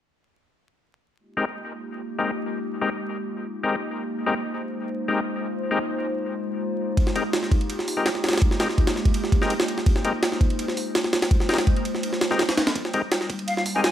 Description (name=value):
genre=drum and bass, jungle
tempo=166 BPM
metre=4/4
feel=straight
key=F minor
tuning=A4 = 441 Hz
part: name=warbly tape-like pad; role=sustained chords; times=1.6-13.9 s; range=G3 to C5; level=-29 LUFS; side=equal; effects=chorus, built-in reverb
part: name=overdriven tonewheel organ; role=stabs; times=1.4-13.9 s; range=Ab3 to Bb4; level=-28 LUFS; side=left 3 dB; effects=chorus vibrato, vintage 12-bit sampler grit, low-pass filter, dub echo
part: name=jungle sampler-style drum kit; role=drums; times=7.0-13.9 s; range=hi-hat, kick drum, ride cymbal, snare drum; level=-21 LUFS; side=equal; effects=high-pass filter on kick, studio ambience, high-pass filter on cymbals, high-pass filter on snare, high-pass filter on hats
part: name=bright silver concert flute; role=melody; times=13.5-13.9 s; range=F5 to Ab5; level=-25 LUFS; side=equal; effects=dub echo
room=light reverb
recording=vinyl crackle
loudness=-22 LUFS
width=side -11 dB against mid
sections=1.2-12.8 A section; 12.8-13.9 B section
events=build-up 12.8-13.9; filter sweep on ambient pad 12.8-13.9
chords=1.2 Fm11